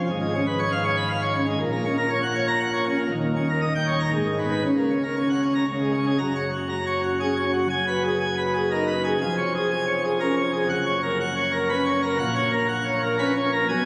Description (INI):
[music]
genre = classical, organ toccata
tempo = 120 BPM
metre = 3/4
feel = straight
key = F# major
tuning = A4 = 440 Hz
[part]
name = pipe organ, plenum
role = solo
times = 0.0-13.9 s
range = D#1 to B5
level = -24 LUFS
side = equal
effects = none
[sound]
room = wet church reverb, RT60 3.5 s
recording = recorded on a phone in the room, studio reverb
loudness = -24 LUFS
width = mono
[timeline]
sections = 0.0-6.2 A section; 6.2-13.9 B section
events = none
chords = 0.1 C#7/G#; 1.6 F#/A#; 3.1 D#7; 4.1 G#m; 4.6 F#/C#; 5.7 C#5; 6.2 F#; 7.7 G#m7/F#; 9.2 C#/E#; 10.7 F#; 12.2 F#/A#